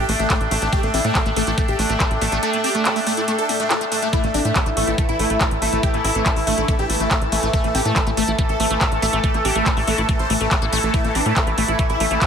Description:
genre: psychedelic trance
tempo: 141 BPM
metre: 4/4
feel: straight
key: unclear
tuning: A4 = 441 Hz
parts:
  - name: dense compressed supersaw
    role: melody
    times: 0.0-12.3 s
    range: A3 to C5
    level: -24 LUFS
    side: equal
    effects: phaser, sidechain pumping, ping-pong delay
  - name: bubbling stepped-filter texture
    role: sustained chords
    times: 0.0-12.3 s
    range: E3 to A4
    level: -24 LUFS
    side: equal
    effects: chorus, built-in reverb, sidechain pumping
  - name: tight sequencer bass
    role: bass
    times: 0.0-12.2 s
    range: A1 to A2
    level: -24 LUFS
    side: equal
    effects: none
  - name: airy breathy pad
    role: texture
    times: 0.0-12.3 s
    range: A4 to A5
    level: -27 LUFS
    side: left 1 dB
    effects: chorus, sidechain pumping
  - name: liquid acid bass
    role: riff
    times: 0.1-12.3 s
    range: A3 to E4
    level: -28 LUFS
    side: moving between left 7 dB and right 6 dB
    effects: phaser, auto-pan, sidechain pumping, ping-pong delay
  - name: drum and bass drum kit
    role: drums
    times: 0.1-12.3 s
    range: handclaps, hi-hat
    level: -23 LUFS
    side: equal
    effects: none
  - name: electronic kick drum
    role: drums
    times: 0.3-12.3 s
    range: none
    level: -21 LUFS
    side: equal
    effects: none
  - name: formant-sweep wobble bass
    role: second line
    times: 6.2-6.9 s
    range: C4 to D4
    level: -37 LUFS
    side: left 2 dB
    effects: none
room: light reverb, digital ambience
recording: none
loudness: -17 LUFS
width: side -7 dB against mid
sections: 0.0-12.3 A section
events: none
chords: 0.0 A5

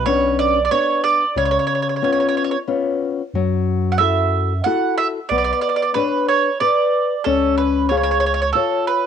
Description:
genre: italian folk, Italian serenade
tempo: 92 BPM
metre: 3/4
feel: straight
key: unclear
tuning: A4 = 441 Hz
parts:
  - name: mandolin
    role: melody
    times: 0.0-9.1 s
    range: A4 to F#5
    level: -18 LUFS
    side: right 7 dB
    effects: cassette tape, plate reverb
  - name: nylon-string guitar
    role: accompaniment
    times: 0.0-9.1 s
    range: C#3 to E#5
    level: -20 LUFS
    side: left 6 dB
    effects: cassette tape, plate reverb
  - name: warm sub bass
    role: bass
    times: 0.0-8.5 s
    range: B1 to F#2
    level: -23 LUFS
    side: equal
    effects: none
room: wet booth ambience, RT60 0.2 s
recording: home recording on cassette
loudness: -16 LUFS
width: side -8 dB against mid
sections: 0.0-9.1 A section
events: none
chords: 0.0 Bmadd9; 1.4 C#7; 3.3 F#m7; 5.3 Bmadd9; 7.3 C#

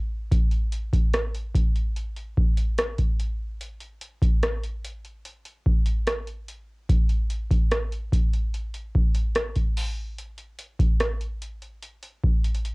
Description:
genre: R&B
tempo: 73 BPM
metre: 4/4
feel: straight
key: none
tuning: none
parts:
  - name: booming analog drum machine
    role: drums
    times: 0.3-12.7 s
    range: hi-hat, kick drum, rim click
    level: -22 LUFS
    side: equal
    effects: cassette tape
room: little or no reverb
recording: home recording on cassette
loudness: -22 LUFS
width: side -28 dB against mid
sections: 0.3-12.7 A section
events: none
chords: none

